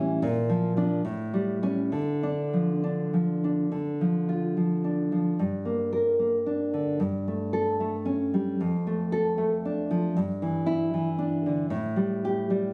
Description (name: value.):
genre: romantic piece for solo classical guitar.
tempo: 65-78 BPM.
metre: 2/4.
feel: rubato.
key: D minor.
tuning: A4 = 439 Hz.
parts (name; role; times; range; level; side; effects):
nylon-string guitar; solo; 0.0-12.7 s; F2 to Bb4; -27 LUFS; equal; none.
room: light reverb.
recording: recorded on a phone in the room, club ambience, compression.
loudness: -27 LUFS.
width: mono.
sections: 0.0-3.7 A section; 3.7-12.7 B section.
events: none.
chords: 0.2 Bb; 1.0 A7; 1.9 Dm; 5.4 Gm; 7.0 A7/G; 8.6 Dm/F; 10.1 Em7/G; 11.7 A7(no3).